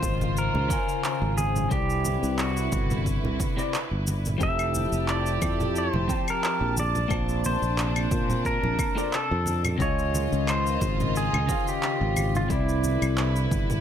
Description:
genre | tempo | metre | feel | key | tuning
sunset chillout | 89 BPM | 4/4 | swing 54% on 16ths | unclear | A4 = 440 Hz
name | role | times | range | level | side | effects
pedal steel guitar | melody | 0.0-13.8 s | E4 to E5 | -30 LUFS | equal | vintage 12-bit sampler grit, tape echo
clean electric guitar | accompaniment | 0.0-13.8 s | C3 to A5 | -30 LUFS | moving between left 6 dB and right 2 dB | auto-pan
dark studio string section | sustained chords | 0.0-13.8 s | C3 to A5 | -34 LUFS | right 1 dB | none
sustaining fretless electric bass | bass | 0.0-13.8 s | F1 to Bb2 | -27 LUFS | equal | none
electronic kick drum | drums | 0.0-13.7 s | none | -30 LUFS | equal | overdrive
electronic shaker, handclaps and claves | drums | 0.0-13.8 s | none | -33 LUFS | equal | overdrive
congas | percussion | 0.0-13.8 s | none | -34 LUFS | right 2 dB | none
room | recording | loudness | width
light reverb | none | -23 LUFS | side -9 dB against mid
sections
0.0-13.8 A section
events
none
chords
0.0 Dbmaj9; 1.7 Cmaj9; 4.4 Fmaj9; 6.8 Bbmaj9; 9.8 Dbmaj9; 12.5 Cmaj9

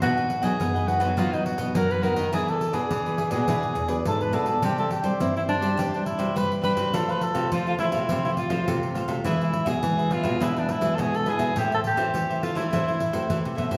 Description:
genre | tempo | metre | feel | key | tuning
samba and choro | 104 BPM | 4/4 | straight | unclear | A4 = 441 Hz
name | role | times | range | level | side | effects
breathy alto saxophone | melody | 0.0-13.5 s | D4 to B4 | -29 LUFS | equal | none
cavaquinho | accompaniment | 0.0-13.8 s | D4 to F#5 | -34 LUFS | equal | none
nylon-string guitar | accompaniment | 0.0-13.8 s | F#2 to G#4 | -33 LUFS | equal | none
nylon-string guitar | bass | 0.0-13.8 s | E2 to C4 | -32 LUFS | equal | none
pandeiro | percussion | 0.0-13.8 s | none | -34 LUFS | equal | none
room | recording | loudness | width
wet recital hall reverb, RT60 1.3 s | recorded in a church or concert hall | -25 LUFS | mono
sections
0.0-13.8 A section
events
none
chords
0.0 B; 2.3 E7; 4.6 Csus2; 6.9 F; 9.2 E; 11.6 Am

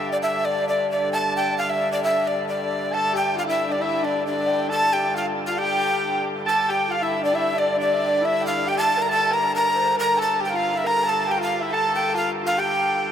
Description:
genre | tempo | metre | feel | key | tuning
medieval dance | 136 BPM | 2/4 | straight | G dorian | A4 = 440 Hz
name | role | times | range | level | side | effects
breathy bright tenor recorder | melody | 0.0-13.1 s | D5 to Bb5 | -22 LUFS | equal | none
growling alto saxophone | second line | 0.0-13.1 s | Bb4 to A5 | -27 LUFS | right 3 dB | none
rich hurdy-gurdy | drone | 0.0-13.1 s | G2 to D3 | -31 LUFS | left 1 dB | none
clear fiddle | second line | 2.9-13.1 s | D4 to Bb4 | -28 LUFS | left 4 dB | none
room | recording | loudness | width
wet huge ambient reverb, RT60 9.2 s | in a vast, echoing space | -20 LUFS | side -9 dB against mid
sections
0.0-6.5 A section; 6.5-13.1 A section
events
speeding up 0.0-13.1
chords
none

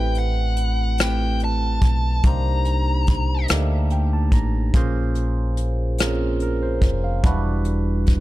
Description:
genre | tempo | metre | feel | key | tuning
slow six-eight R&B | 48 BPM (dotted quarters) | 6/8 | straight | unclear | A4 = 440 Hz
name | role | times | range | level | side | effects
bluesy overdriven lead guitar | melody | 0.0-3.5 s | F#5 to Bb5 | -28 LUFS | equal | distortion
barky tine electric piano | accompaniment | 0.0-8.2 s | F#3 to Bb5 | -26 LUFS | right 2 dB | overdrive, phaser
deep dub fingered electric bass | bass | 0.0-8.2 s | E1 to D2 | -21 LUFS | equal | none
soft brush drum kit | drums | 0.1-8.2 s | hi-hat, kick drum, rim click | -20 LUFS | equal | none
room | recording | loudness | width
little or no reverb | dark, warm production | -18 LUFS | side -16 dB against mid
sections
0.0-8.2 A section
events
tine electric piano fill 3.5-4.7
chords
0.0 Am9; 2.2 Cm9; 4.7 Bbm9; 7.2 Em9

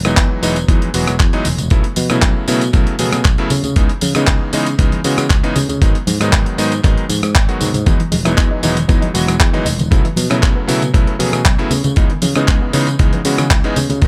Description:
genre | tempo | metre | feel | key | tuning
nu-disco, nu disco | 117 BPM | 4/4 | straight | unclear | A4 = 440 Hz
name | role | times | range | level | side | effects
clear electric grand piano | accompaniment | 0.0-14.1 s | C#3 to G#4 | -22 LUFS | equal | vintage 12-bit sampler grit, sidechain pumping, digital delay
picked electric bass | bass | 0.0-14.1 s | E1 to C#3 | -21 LUFS | equal | none
dusty soul sampler-style drum kit | drums | 0.0-14.1 s | handclaps, hi-hat, rim click, tambourine | -22 LUFS | equal | none
electronic kick drum | drums | 0.2-14.1 s | none | -16 LUFS | equal | none
congas | percussion | 0.8-14.0 s | none | -25 LUFS | equal | none
soft round pluck | arpeggios | 7.9-14.1 s | C#3 to E4 | -26 LUFS | equal | none
room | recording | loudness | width
digital ambience | none | -15 LUFS | mono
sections
0.0-14.1 A section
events
none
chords
0.0 Emaj7; 1.7 B9sus4; 3.5 C#m9; 5.8 G#m7; 7.9 Emaj7; 9.9 B9sus4; 11.7 C#m9

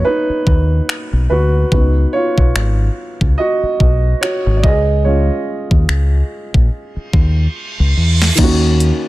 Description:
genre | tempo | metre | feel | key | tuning
contemporary R&B | 72 BPM | 4/4 | swing 58% on 16ths | unclear | A4 = 439 Hz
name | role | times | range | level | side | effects
dark grand piano | accompaniment | 0.0-9.1 s | Eb3 to D#5 | -18 LUFS | right 1 dB | none
deep dub fingered electric bass | bass | 0.3-8.9 s | Ab1 to Fb2 | -13 LUFS | equal | none
clean 12-bit digital drum machine | drums | 0.5-9.0 s | crash cymbal, finger snaps, hi-hat, kick drum, snare drum | -16 LUFS | equal | overdrive
reverse cymbal | sound effects | 7.4-8.4 s | none | -22 LUFS | right 3 dB | none
room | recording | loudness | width
little or no reverb | none | -12 LUFS | side -18 dB against mid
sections
0.0-8.4 A section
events
grand piano solo 0.0-8.4; reverse cymbal 7.4-8.4; drum fill 7.6-8.4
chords
0.0 Bmaj9; 1.7 Db7sus4; 4.6 Bbm7/Db (rootless); 8.4 Ebm7

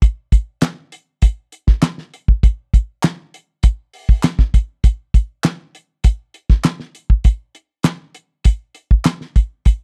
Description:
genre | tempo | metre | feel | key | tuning
funk | 100 BPM | 4/4 | straight | none | none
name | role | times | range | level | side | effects
cloth-damped thuddy drum kit | drums | 0.0-9.8 s | hi-hat, kick drum, snare drum | -15 LUFS | equal | none
group handclap | percussion | 0.6-9.2 s | none | -26 LUFS | equal | none
room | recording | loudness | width
little or no reverb | dry, close 1970s-style studio recording | -18 LUFS | mono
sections
0.0-9.8 A section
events
none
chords
none

